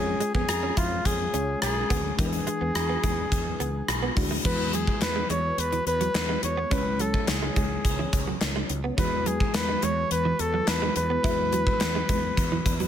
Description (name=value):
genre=1980s-style pop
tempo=106 BPM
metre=4/4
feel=straight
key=unclear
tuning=A4 = 440 Hz
part: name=clear flugelhorn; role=melody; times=0.0-12.9 s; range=E#4 to C#5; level=-28 LUFS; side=equal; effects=none
part: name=FM electric piano with soft pad layer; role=accompaniment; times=0.0-12.9 s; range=C#3 to C#5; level=-33 LUFS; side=left 3 dB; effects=chorus
part: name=mellow fretless electric bass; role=bass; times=0.0-12.9 s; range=B1 to E#2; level=-31 LUFS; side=equal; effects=none
part: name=direct-recorded clean electric guitar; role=riff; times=0.1-12.9 s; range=E3 to E4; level=-34 LUFS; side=right 6 dB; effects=ensemble chorus
part: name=gated 80s drum kit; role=drums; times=0.2-12.9 s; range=crash cymbal, hi-hat, kick drum, rim click, snare drum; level=-27 LUFS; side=equal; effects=gated reverb
part: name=group handclap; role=percussion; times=5.0-11.9 s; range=none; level=-40 LUFS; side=left 5 dB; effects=none
room=light reverb, small room ambience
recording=none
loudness=-23 LUFS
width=side -10 dB against mid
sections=0.0-4.5 A section; 4.5-12.9 B section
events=none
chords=0.0 C#/E#; 2.2 E7; 4.5 Eadd9; 6.7 C#m; 9.0 Eadd9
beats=0.49 1.05 1.62 | 2.19 2.75 3.32 3.88 | 4.45 5.02 5.58 6.15 | 6.71 7.28 7.85 8.41 | 8.98 9.54 10.11 10.68 | 11.24 11.81 12.38